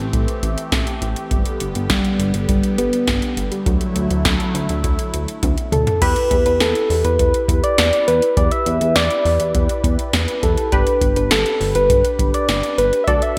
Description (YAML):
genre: synth-pop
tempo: 102 BPM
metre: 4/4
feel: straight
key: G major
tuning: A4 = 437 Hz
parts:
  - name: soft struck synth lead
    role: melody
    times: 0.0-13.4 s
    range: F#3 to E5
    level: -21 LUFS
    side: equal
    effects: chorus, digital delay
  - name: phased analog pad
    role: sustained chords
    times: 0.0-6.0 s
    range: D3 to G4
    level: -30 LUFS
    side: equal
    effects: phaser, chorus
  - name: chorused synth bass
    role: bass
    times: 0.0-13.2 s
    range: G1 to E2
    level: -24 LUFS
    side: equal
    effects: none
  - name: electro analog drum machine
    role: drums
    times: 0.1-13.4 s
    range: crash cymbal, hi-hat, kick drum, snare drum, toms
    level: -22 LUFS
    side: equal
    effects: gated reverb
  - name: funky polysynth comp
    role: accompaniment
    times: 6.0-13.4 s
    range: D4 to B4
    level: -27 LUFS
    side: equal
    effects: chorus
room: moderate plate reverb, RT60 2.5 s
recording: bright 1980s-style digital production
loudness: -18 LUFS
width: mono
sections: 0.0-6.0 A section; 6.0-13.4 B section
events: drum fill 5.4-6.0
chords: 0.0 Am7; 1.3 G; 3.7 Dadd9; 6.0 Em7; 10.7 G